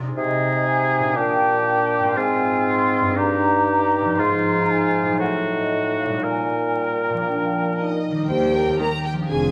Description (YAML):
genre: cinematic, playful, whimsical film cue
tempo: 119 BPM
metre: 4/4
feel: straight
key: Eb major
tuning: A4 = 437 Hz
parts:
  - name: concert harp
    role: arpeggios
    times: 0.0-9.5 s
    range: G2 to Eb5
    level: -30 LUFS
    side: equal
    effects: none
  - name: clear oboe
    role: second line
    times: 0.2-8.0 s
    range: F4 to Bb4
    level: -26 LUFS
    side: equal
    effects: none
  - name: mellow clarinet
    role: second line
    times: 0.2-8.0 s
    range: C4 to Eb4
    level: -30 LUFS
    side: equal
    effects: none
  - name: mellow hollow small flute group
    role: second line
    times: 0.2-7.8 s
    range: Eb5 to C6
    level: -27 LUFS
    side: equal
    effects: none
  - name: mellow bassoon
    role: accompaniment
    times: 0.2-8.0 s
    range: G2 to C3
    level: -26 LUFS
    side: equal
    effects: none
  - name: clear chamber violin section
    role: melody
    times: 7.8-9.5 s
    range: Eb5 to Bb5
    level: -32 LUFS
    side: equal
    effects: none
  - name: warm French horn section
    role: sustained chords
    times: 7.8-9.5 s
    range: Eb4 to Bb4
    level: -26 LUFS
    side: equal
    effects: none
  - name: rich chamber violin section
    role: second line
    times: 8.3-9.5 s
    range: G4 to C5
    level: -29 LUFS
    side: equal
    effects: none
  - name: rich chamber cello section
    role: bass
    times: 8.3-9.5 s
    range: Eb2 to F2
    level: -30 LUFS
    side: equal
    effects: none
  - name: rich studio double bass section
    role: bass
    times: 8.3-9.5 s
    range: F1 to Eb2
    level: -32 LUFS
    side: equal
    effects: none
  - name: rich chamber viola section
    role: accompaniment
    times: 8.8-8.9 s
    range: Eb3 to Bb3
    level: -36 LUFS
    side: equal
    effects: none
room: wet recital hall reverb, RT60 1.6 s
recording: vinyl crackle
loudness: -20 LUFS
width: mono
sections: 0.0-8.3 A section; 8.3-9.5 A section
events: none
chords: 0.2 Ab/C; 1.2 Gm/Bb; 2.2 Fm/Ab; 3.2 Eb/G; 4.2 Fm7/Ab; 5.2 Adim7; 6.2 Eb/Bb; 8.3 Eb